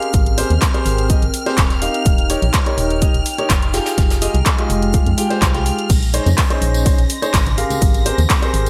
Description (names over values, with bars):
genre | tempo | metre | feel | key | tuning
piano house | 125 BPM | 4/4 | straight | Eb mixolydian | A4 = 440 Hz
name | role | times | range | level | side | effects
string machine, violins | sustained chords | 0.0-8.7 s | F6 to Bb6 | -31 LUFS | equal | ensemble chorus, sidechain pumping
warm concert grand piano | riff | 0.0-8.7 s | Eb4 to G5 | -24 LUFS | equal | sidechain pumping, digital delay
house drum kit | drums | 0.0-8.7 s | crash cymbal, handclaps, hi-hat, ride cymbal | -24 LUFS | equal | overdrive, gated reverb
warbly tape-like pad | texture | 0.0-8.7 s | Ab3 to C6 | -29 LUFS | equal | chorus, built-in reverb, sidechain pumping
organ-like FM bass | bass | 0.1-8.7 s | Eb1 to F2 | -21 LUFS | equal | sidechain pumping
electronic kick drum | drums | 0.1-8.4 s | none | -19 LUFS | equal | overdrive
vintage brush drum kit | drums | 0.1-8.7 s | hi-hat, shaker, snare drum | -32 LUFS | equal | none
tambourine and congas | percussion | 5.9-8.7 s | none | -31 LUFS | equal | none
room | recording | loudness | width
studio ambience | bright 1980s-style digital production | -16 LUFS | mono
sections
0.0-8.7 A section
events
none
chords
0.0 Abmaj9; 1.8 Eb7; 3.7 Fm9; 5.9 Bbm11; 7.6 Abmaj9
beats
| 0.14 0.62 1.10 1.58 | 2.06 2.54 3.02 3.50 | 3.98 4.46 4.94 5.42 | 5.90 6.38 6.86 7.34 | 7.82 8.30